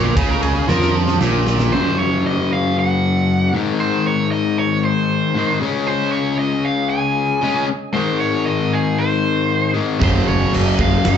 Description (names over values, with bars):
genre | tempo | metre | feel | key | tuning
hard rock | 116 BPM | 4/4 | straight | unclear | A4 = 441 Hz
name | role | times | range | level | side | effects
nasal lead guitar with a parked wah | melody | 0.0-11.2 s | Ab4 to Ab5 | -22 LUFS | right 2 dB | overdrive, slapback echo, tape echo
percussive tonewheel organ | sustained chords | 0.0-11.2 s | Gb3 to Eb5 | -31 LUFS | right 5 dB | slow rotary speaker
crunchy overdriven guitar | riff | 0.0-11.2 s | Gb2 to Db4 | -18 LUFS | left 5 dB | none
overdriven electric guitar | riff | 0.0-1.7, 10.0-11.2 s | Gb2 to Gb3 | -23 LUFS | right 16 dB | slapback echo
fuzz fingered electric bass | bass | 0.0-1.7, 10.0-11.2 s | Gb1 to F2 | -20 LUFS | right 1 dB | overdrive
huge arena drum kit | drums | 0.2-1.7, 10.0-11.2 s | crash cymbal, kick drum, ride cymbal, snare drum | -22 LUFS | right 2 dB | none
room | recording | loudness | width
light reverb | live gig heard through the venue's PA, club reverb, nothing above 7.9 kHz | -15 LUFS | side -8 dB against mid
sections
0.0-1.7 A section; 1.7-11.2 B section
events
lead electric guitar solo 0.0-1.7; drum fill 0.7-1.7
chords
0.0 Bbm; 1.7 Gb5; 3.5 Ab; 5.6 Db5; 7.9 Ab; 10.0 Gb5